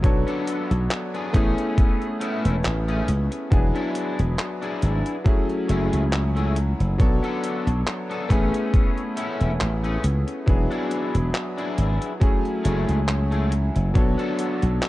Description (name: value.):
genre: vaporwave.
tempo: 69 BPM.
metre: 4/4.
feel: swing 55% on 16ths.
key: A major.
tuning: A4 = 439 Hz.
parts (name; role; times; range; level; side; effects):
bright electric grand piano; accompaniment; 0.0-14.9 s; F#3 to C#5; -27 LUFS; left 1 dB; lush chorus, tape echo.
slap bass; bass; 0.0-14.8 s; E1 to C#2; -22 LUFS; equal; none.
detuned 8-bit digital drum machine; drums; 0.0-14.9 s; handclaps, hi-hat; -30 LUFS; equal; vintage 12-bit sampler grit.
electronic kick drum; drums; 0.0-14.1 s; none; -19 LUFS; equal; vintage 12-bit sampler grit.
electric guitar at the edge of break-up; riff; 0.3-14.6 s; A3 to A4; -30 LUFS; left 2 dB; analog chorus, tape echo.
room: little or no reverb.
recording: dark, warm production.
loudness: -20 LUFS.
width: side -17 dB against mid.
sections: 0.0-14.9 A section.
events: none.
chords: 0.0 Bm7; 1.3 Amaj7; 3.5 E7; 5.3 F#m9; 7.0 Bm7; 8.3 Amaj7; 10.5 E7; 12.2 F#m9; 14.0 Bm7.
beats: | 0.04 0.91 1.78 2.65 | 3.52 4.39 5.26 6.13 | 7.00 7.87 8.74 9.61 | 10.47 11.34 12.21 13.08 | 13.95 14.82.